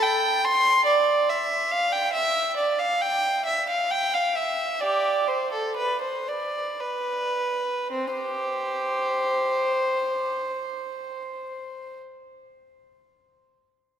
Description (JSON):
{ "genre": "classical, baroque-style suite movement for unaccompanied violin", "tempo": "53-72 BPM", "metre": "3/4", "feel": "rubato", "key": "C major", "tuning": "A4 = 440 Hz", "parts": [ { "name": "rich violin", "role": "solo", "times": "0.0-12.0 s", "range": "C4 to C6", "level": "-22 LUFS", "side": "right 1 dB", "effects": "none" } ], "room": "wet church reverb, RT60 3.6 s", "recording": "none", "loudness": "-22 LUFS", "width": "side -9 dB against mid", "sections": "0.0-7.9 A section; 7.9-11.2 B section", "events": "slowing down 0.9-7.9", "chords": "none" }